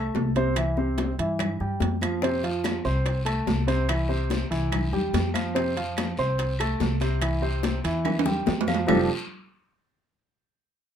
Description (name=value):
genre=Afro-Cuban jazz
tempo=144 BPM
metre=4/4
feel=straight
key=F major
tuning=A4 = 440 Hz
part: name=dark concert grand piano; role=accompaniment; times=0.0-9.1 s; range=C3 to C6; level=-27 LUFS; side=right 1 dB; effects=none
part: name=upright bass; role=bass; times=0.0-9.1 s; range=F1 to G2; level=-28 LUFS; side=equal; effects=none
part: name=bongos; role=percussion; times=0.1-9.0 s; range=none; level=-33 LUFS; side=left 6 dB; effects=none
part: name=congas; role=percussion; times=0.1-9.0 s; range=none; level=-31 LUFS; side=left 3 dB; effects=none
part: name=timbales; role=percussion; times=0.2-9.0 s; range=none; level=-30 LUFS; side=right 7 dB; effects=none
part: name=claves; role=percussion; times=0.6-9.0 s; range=none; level=-36 LUFS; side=right 2 dB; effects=none
part: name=guiro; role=percussion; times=2.2-9.0 s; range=none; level=-39 LUFS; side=left 2 dB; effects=none
room=light reverb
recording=minimal, uncompressed stereo recording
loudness=-23 LUFS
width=side -9 dB against mid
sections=0.0-8.9 A section; 8.9-10.5 B section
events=drum fill 8.1-8.9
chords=0.0 F (rootless); 0.6 C; 2.2 F; 3.9 C; 5.6 F; 7.2 C; 8.9 F69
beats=0.15 | 0.57 0.98 1.40 1.81 | 2.23 2.65 3.06 3.48 | 3.89 4.31 4.72 5.14 | 5.56 5.97 6.39 6.80 | 7.22 7.64 8.05 8.47 | 8.88